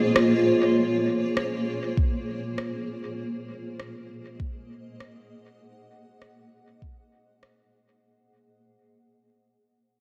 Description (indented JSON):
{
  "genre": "ambient dub",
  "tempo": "99 BPM",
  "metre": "4/4",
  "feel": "swing 53% on 16ths",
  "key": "unclear",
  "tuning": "A4 = 441 Hz",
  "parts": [
    { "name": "granular cloud pad", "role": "sustained chords", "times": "0.0-8.0 s", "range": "Bb3 to Gb5", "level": "-27 LUFS", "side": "equal", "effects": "built-in reverb" },
    { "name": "electronic rim click", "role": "drums", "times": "0.2-7.6 s", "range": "none", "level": "-31 LUFS", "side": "equal", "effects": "dub echo" },
    { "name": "electronic kick drum", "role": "drums", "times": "2.0-6.9 s", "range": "none", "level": "-28 LUFS", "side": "equal", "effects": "none" }
  ],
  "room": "wet echo chamber reverb, RT60 2.5 s",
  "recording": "vinyl crackle",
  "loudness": "-26 LUFS",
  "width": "mono",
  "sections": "0.0-8.0 A section",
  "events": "fade-out 0.0-8.0",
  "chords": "0.0 Bbm7; 3.2 Ab7/Bb",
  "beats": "0.15 | 0.76 1.36 1.97 2.58 | 3.18 3.79 4.39 5.00 | 5.61 6.21 6.82 7.42"
}